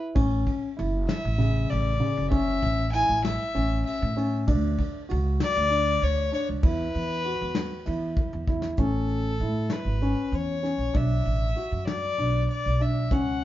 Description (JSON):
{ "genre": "progressive instrumental, band music in an uneven meter", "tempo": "195 BPM (eighths)", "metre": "7/8", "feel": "straight", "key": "unclear", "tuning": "A4 = 439 Hz", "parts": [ { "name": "dark concert grand piano", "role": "arpeggios", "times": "0.0-13.4 s", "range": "C#3 to F#4", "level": "-30 LUFS", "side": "left 1 dB", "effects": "none" }, { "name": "upright bass", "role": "bass", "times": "0.2-13.4 s", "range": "F#1 to A2", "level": "-27 LUFS", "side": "right 1 dB", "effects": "none" }, { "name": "soft brush drum kit", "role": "drums", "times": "0.2-13.3 s", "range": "hi-hat, kick drum, ride cymbal, snare drum", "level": "-28 LUFS", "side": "equal", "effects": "none" }, { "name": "warm violin", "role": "melody", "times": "1.1-13.4 s", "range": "A4 to G#5", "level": "-29 LUFS", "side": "left 3 dB", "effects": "plate reverb" } ], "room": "wet small room reverb, RT60 0.5 s", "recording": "heard from further back in the room, nothing above 7.5 kHz", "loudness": "-23 LUFS", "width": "side -14 dB against mid", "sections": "0.0-8.8 A section; 8.8-13.4 B section", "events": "drum fill 8.2-8.8", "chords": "0.2 A; 4.5 D; 6.6 Esus2; 8.8 Amaj7; 10.9 Bm7" }